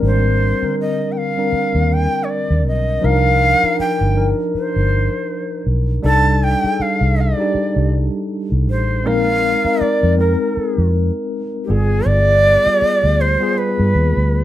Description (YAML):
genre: lush 1970s-style soul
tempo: 80 BPM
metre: 4/4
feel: swing 58% on 16ths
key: C minor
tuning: A4 = 440 Hz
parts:
  - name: tine electric piano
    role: accompaniment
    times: 0.0-14.4 s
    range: D3 to Bb4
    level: -20 LUFS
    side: left 1 dB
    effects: medium stereo tremolo
  - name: vintage muted fingered electric bass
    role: bass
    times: 0.0-14.4 s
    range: G1 to G2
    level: -16 LUFS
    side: equal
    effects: none
  - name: breathy bright shakuhachi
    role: melody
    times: 0.1-14.4 s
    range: G4 to A5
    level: -18 LUFS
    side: right 1 dB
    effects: none
room: moderate studio reverb, RT60 0.6 s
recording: rough home demo mix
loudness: -14 LUFS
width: side -13 dB against mid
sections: 0.0-14.4 A section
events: none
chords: 0.0 Abmaj9#11; 3.0 Cm11; 6.0 F13 (rootless); 9.1 Bb9sus4; 11.7 G7b9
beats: | 0.03 0.78 1.53 2.28 | 3.03 3.79 4.54 5.29 | 6.04 6.79 7.55 8.30 | 9.05 9.81 10.56 11.31 | 12.07 12.82 13.57 14.33